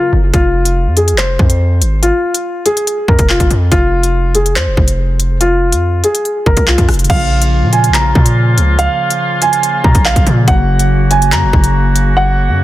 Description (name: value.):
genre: hip hop, drill.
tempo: 142 BPM.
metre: 4/4.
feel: half-time.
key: F phrygian.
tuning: A4 = 441 Hz.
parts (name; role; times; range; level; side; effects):
dark concert grand piano; melody; 0.0-12.6 s; F4 to Bb5; -15 LUFS; equal; tape echo.
mellow tine electric piano; accompaniment; 0.0-0.4, 7.0-12.6 s; Db3 to Gb4; -17 LUFS; left 1 dB; ensemble chorus.
distorted 808-style bass; bass; 0.1-12.6 s; F1 to Bb2; -13 LUFS; equal; distortion.
drill drum kit; drums; 0.3-12.1 s; crash cymbal, handclaps, hi-hat, kick drum, rim click; -13 LUFS; equal; none.
warm woodwind section; sustained chords; 7.1-12.6 s; Db3 to Gb4; -20 LUFS; left 1 dB; none.
room: little or no reverb.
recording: dense, heavily limited modern master.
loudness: -10 LUFS.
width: side -15 dB against mid.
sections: 0.0-7.1 A section; 7.1-12.6 B section.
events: hi-hats muted 12.2-12.6.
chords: 0.3 F5; 7.1 Bbm; 10.5 Gb.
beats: | 0.34 0.76 1.18 1.60 | 2.03 2.45 2.87 3.29 | 3.72 4.14 4.56 4.98 | 5.41 5.83 6.25 6.67 | 7.10 7.52 7.94 8.37 | 8.79 9.21 9.63 10.05 | 10.48 10.90 11.32 11.74 | 12.17 12.59.